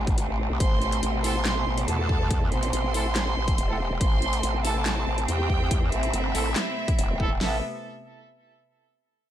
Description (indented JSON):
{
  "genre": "heavy wobble dubstep",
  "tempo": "141 BPM",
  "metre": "4/4",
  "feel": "half-time",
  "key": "A minor",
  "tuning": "A4 = 439 Hz",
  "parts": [
    { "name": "bright symphonic string section", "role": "sustained chords", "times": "0.0-7.6 s", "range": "B2 to D4", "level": "-32 LUFS", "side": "right 2 dB", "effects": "sidechain pumping" },
    { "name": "growl bass", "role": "bass", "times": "0.0-7.6 s", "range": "E1 to E2", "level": "-27 LUFS", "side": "equal", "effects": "chorus, overdrive" },
    { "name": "dubstep drum kit", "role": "drums", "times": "0.1-7.5 s", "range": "hi-hat, kick drum, snare drum", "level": "-25 LUFS", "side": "equal", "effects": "none" },
    { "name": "dubstep drum kit", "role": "drums", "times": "0.1-7.1 s", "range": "handclaps, hi-hat, snare drum", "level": "-31 LUFS", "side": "left 1 dB", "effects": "none" },
    { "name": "warm chamber violin section", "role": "melody", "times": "0.6-7.6 s", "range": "E4 to C6", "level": "-31 LUFS", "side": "right 2 dB", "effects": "digital delay" },
    { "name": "clear brass ensemble", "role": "stabs", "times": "1.2-7.6 s", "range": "A3 to A4", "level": "-34 LUFS", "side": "right 4 dB", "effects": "digital delay" }
  ],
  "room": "digital ambience",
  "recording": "none",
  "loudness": "-23 LUFS",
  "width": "side -11 dB against mid",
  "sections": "0.0-7.4 A section; 7.4-9.1 B section",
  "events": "drop 0.0-7.4",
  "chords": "0.0 Amadd9; 7.4 N.C."
}